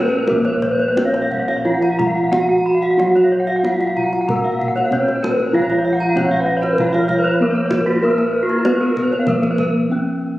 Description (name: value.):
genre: Balinese gamelan.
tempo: 86-96 BPM.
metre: 4/4.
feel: straight.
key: Bb pelog.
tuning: A4 = 440 Hz.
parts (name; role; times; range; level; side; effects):
gamelan-type bronze metallophone; melody; 0.0-10.4 s; Bb3 to Bb4; -20 LUFS; equal; none.
gamelan-type bronze metallophone; accompaniment; 0.0-10.4 s; F3-30c to Bb3; -25 LUFS; equal; none.
gamelan-type bronze metallophone; arpeggios; 0.0-9.6 s; F4-30c to Bb5; -21 LUFS; left 1 dB; none.
gamelan-type bossed gongs; bass; 0.0-10.4 s; Bb1 to Bb4; -22 LUFS; equal; none.
gamelan-type bronze metallophone; arpeggios; 0.1-9.7 s; F4-30c to Cb6+20c; -23 LUFS; right 1 dB; none.
kendang; percussion; 0.3-9.7 s; none; -26 LUFS; right 1 dB; none.
mellow bansuri; second line; 6.2-9.6 s; Bb4 to Db5+25c; -25 LUFS; right 2 dB; none.
room: moderate scoring stage reverb, RT60 2.0 s.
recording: recorded on a phone in the room, club reverb, compression.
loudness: -15 LUFS.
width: side -16 dB against mid.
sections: 0.0-5.5 A section; 5.5-10.4 B section.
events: break 9.6-10.4.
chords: none.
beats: | 0.27 0.96 1.65 2.32 | 2.98 3.63 4.28 4.92 | 5.54 6.17 6.79 7.41 | 8.03 8.66 9.28 9.90.